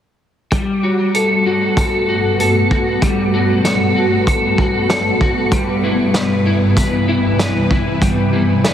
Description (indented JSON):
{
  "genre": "dream pop",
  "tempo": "96 BPM",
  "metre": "4/4",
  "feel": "straight",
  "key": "G major",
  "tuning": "A4 = 440 Hz",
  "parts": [
    { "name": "granular cloud pad", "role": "sustained chords", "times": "1.3-8.7 s", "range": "G2 to F#4", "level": "-17 LUFS", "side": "equal", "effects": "built-in reverb" },
    { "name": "electric guitar at the edge of break-up", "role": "arpeggios", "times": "0.5-8.7 s", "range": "G3 to B4", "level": "-17 LUFS", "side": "left 1 dB", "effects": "ensemble chorus, digital delay" },
    { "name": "loose indie drum kit", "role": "drums", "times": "0.5-8.7 s", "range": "hi-hat, kick drum, snare drum", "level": "-19 LUFS", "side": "equal", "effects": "none" }
  ],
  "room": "light reverb, small room ambience",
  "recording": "heavily compressed radio sound, multiband compression",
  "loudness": "-13 LUFS",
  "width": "side -9 dB against mid",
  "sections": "0.5-8.7 A section",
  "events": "none",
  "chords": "0.5 Gmaj9; 5.5 Cmaj7/G",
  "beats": "| 0.52 1.14 1.77 2.39 | 3.02 3.64 4.27 4.89 | 5.52 6.14 6.77 7.39 | 8.02 8.64"
}